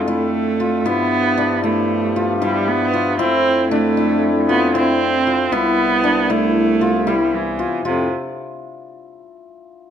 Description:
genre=contemporary instrumental, chamber music in an uneven meter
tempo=232 BPM (eighths)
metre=9/8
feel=straight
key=F lydian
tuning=A4 = 444 Hz
part: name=warm viola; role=second line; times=0.0-8.1 s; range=C3 to C4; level=-19 LUFS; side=right 5 dB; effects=none
part: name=dark woodwind section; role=sustained chords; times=0.0-8.1 s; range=A2 to A4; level=-26 LUFS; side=left 1 dB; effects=none
part: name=hammered dulcimer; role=arpeggios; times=0.0-8.1 s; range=D4 to A4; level=-20 LUFS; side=left 4 dB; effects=none
part: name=warm bass clarinet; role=bass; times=0.0-8.1 s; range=C2 to G2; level=-23 LUFS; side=left 1 dB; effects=none
room=moderate recital hall reverb, RT60 1.4 s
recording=close, detailed microphones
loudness=-15 LUFS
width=side -9 dB against mid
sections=0.0-7.9 A section; 7.9-9.9 B section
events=none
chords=0.0 Fmaj7; 0.9 G7; 3.2 Fmaj7; 5.5 Cmaj7; 7.9 Fmaj7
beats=0.08 0.34 0.60 | 0.86 1.12 1.38 1.64 1.89 2.15 2.41 2.67 2.93 | 3.19 3.45 3.71 3.97 4.23 4.49 4.74 5.00 5.26 | 5.52 5.78 6.04 6.30 6.56 6.82 7.08 7.33 7.59 | 7.85

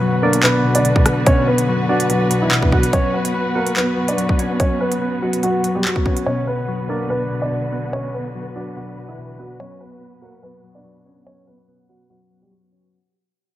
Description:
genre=hip hop, drill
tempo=144 BPM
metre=4/4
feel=half-time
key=B minor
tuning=A4 = 438 Hz
part: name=dark baby grand piano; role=melody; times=0.0-12.9 s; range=E3 to D5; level=-21 LUFS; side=right 1 dB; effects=low-pass filter, digital delay
part: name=soft electric-piano-like synth keys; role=accompaniment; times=0.0-13.0 s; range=B2 to F#4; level=-21 LUFS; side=left 2 dB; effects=chorus, low-pass filter
part: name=dark symphonic string section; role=sustained chords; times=0.0-12.9 s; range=B2 to B4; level=-26 LUFS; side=equal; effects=low-pass filter
part: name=drill drum kit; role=drums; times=0.3-6.3 s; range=handclaps, hi-hat, kick drum, rim click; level=-18 LUFS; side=equal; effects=none
room=light reverb, studio reverb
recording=none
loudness=-16 LUFS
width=side -14 dB against mid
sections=0.0-12.9 A section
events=fade-out 0.0-12.9; filter sweep 0.0-12.9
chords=0.0 Bm; 2.9 F#sus4; 6.3 Bm; 9.6 F#sus4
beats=0.01 0.43 0.85 | 1.26 1.68 2.10 2.51 | 2.93 3.35 3.76 4.18 | 4.60 5.01 5.43 5.85 | 6.26 6.68 7.10 7.51 | 7.93 8.35 8.76 9.18 | 9.60 10.01 10.43 10.85 | 11.26 11.68 12.10 12.51

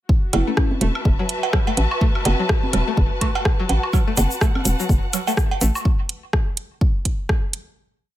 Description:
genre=minimal techno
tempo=125 BPM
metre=4/4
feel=swing 59% on 16ths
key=F# minor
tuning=A4 = 440 Hz
part: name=electronic kick drum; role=drums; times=0.1-7.4 s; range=none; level=-19 LUFS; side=equal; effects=studio reverb
part: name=warm studio string section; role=texture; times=0.1-5.9 s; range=F#4 to A5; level=-28 LUFS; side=left 1 dB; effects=sidechain pumping
part: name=folk marimba with medium mallets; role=melody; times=0.3-2.7 s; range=C#4 to F#4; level=-29 LUFS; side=equal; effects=tape echo
part: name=string-like resonator pluck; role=riff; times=0.3-5.7 s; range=F#3 to A3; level=-28 LUFS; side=left 1 dB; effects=chorus, sidechain pumping, ping-pong delay
part: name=hollow knocking FM bass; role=bass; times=0.3-5.7 s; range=E1 to A1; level=-20 LUFS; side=equal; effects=sidechain pumping
part: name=house drum kit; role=drums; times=0.3-7.6 s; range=hi-hat, rim click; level=-22 LUFS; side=equal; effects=studio reverb
part: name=cowbell, congas and woodblock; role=percussion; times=0.3-5.8 s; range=none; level=-27 LUFS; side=right 4 dB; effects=studio reverb, tape echo
part: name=tube shaker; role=percussion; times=3.9-5.8 s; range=none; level=-29 LUFS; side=left 4 dB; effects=none
room=little or no reverb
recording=none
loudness=-18 LUFS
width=side -14 dB against mid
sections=0.1-7.8 drop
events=drop 0.1-7.8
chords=0.1 F#m7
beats=| 0.09 0.57 1.05 1.53 | 2.01 2.49 2.97 3.45 | 3.93 4.41 4.89 5.37 | 5.85 6.33 6.81 7.29

